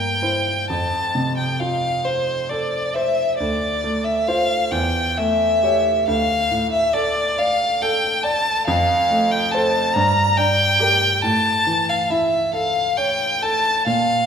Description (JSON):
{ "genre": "classical, romantic duo for violin and grand piano", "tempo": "45 BPM (dotted quarters)", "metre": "6/8", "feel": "uneven beats, rubato", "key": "unclear", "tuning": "A4 = 442 Hz", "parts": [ { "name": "clear violin", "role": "melody", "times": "0.0-14.3 s", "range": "C5 to Bb5", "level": "-18 LUFS", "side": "left 1 dB", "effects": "none" }, { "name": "clear concert grand piano", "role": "accompaniment", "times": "0.0-14.3 s", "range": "D2 to D5", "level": "-22 LUFS", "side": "right 1 dB", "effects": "none" } ], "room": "wet scoring stage reverb, RT60 1.6 s", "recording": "minimal, uncompressed stereo recording", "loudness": "-17 LUFS", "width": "side -7 dB against mid", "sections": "0.0-14.3 A section", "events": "none", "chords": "0.0 C7/G; 0.7 F; 3.4 Dm7; 4.7 A7/E; 6.1 D5; 8.7 F; 10.0 Gm; 11.2 A" }